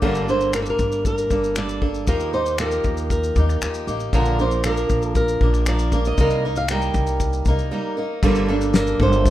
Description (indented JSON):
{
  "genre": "acoustic pop",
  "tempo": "117 BPM",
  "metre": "4/4",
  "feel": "straight",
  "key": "G minor",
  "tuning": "A4 = 440 Hz",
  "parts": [
    { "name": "flamenco guitar", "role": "melody", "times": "0.0-9.3 s", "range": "A4 to G5", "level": "-24 LUFS", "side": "equal", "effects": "none" },
    { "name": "picked steel-string acoustic guitar", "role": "accompaniment", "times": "0.0-9.3 s", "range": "G2 to Bb4", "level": "-23 LUFS", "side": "right 2 dB", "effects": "none" },
    { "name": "upright bass", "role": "bass", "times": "0.0-9.3 s", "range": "G1 to Eb2", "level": "-23 LUFS", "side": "equal", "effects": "none" },
    { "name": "cloth-damped thuddy drum kit", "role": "drums", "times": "0.0-9.3 s", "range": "crash cymbal, finger snaps, kick drum, shaker, snare drum", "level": "-23 LUFS", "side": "left 1 dB", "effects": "none" }
  ],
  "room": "light reverb",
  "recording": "minimal, uncompressed stereo recording",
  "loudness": "-18 LUFS",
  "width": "side -14 dB against mid",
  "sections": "0.0-8.2 A section; 8.2-9.3 B section",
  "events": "break 7.7-8.2",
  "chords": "0.0 Gmadd9; 2.1 Ebadd9; 4.1 Bb; 6.2 Cm7; 8.2 Gmadd9"
}